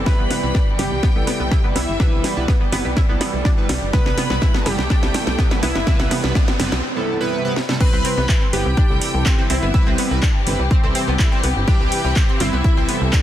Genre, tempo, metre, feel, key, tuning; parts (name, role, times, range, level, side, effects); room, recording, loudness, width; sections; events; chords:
progressive house; 124 BPM; 4/4; straight; C major; A4 = 441 Hz
warm chamber string section; sustained chords; 0.0-13.2 s; E3 to B4; -29 LUFS; left 2 dB; sidechain pumping, low-pass filter
analog pluck; arpeggios; 0.0-13.2 s; B3 to E4; -28 LUFS; equal; ensemble chorus, sidechain pumping, tape echo
chorused polysynth; stabs; 0.0-13.2 s; C3 to B4; -25 LUFS; right 3 dB; sidechain pumping, tape echo
tight sequencer bass; bass; 0.0-13.1 s; G1 to C2; -22 LUFS; equal; sidechain pumping
plucky unison lead; melody; 0.1-13.2 s; E4 to B4; -27 LUFS; left 1 dB; tape echo
clear studio violin section; second line; 0.1-13.2 s; E5 to B5; -31 LUFS; left 1 dB; sidechain pumping, tape echo
electronic kick drum; drums; 0.1-13.2 s; -17 LUFS; equal
house drum kit; drums; 0.1-13.2 s; crash cymbal, handclaps, hi-hat, snare drum; -25 LUFS; equal
riser; sound effects; 2.6-6.8 s; -31 LUFS; right 1 dB
light reverb; dense, heavily limited modern master; -16 LUFS; side -12 dB against mid
0.0-7.8 A section; 7.8-13.2 B section
build-up 0.0-7.8; drum fill 0.0-6.8, 7.6; filter sweep on analog polysynth 0.0-7.8; filter sweep on digital synth lead 0.0-7.8; break 6.8-7.8; drop 7.8-13.2
0.0 Cmaj7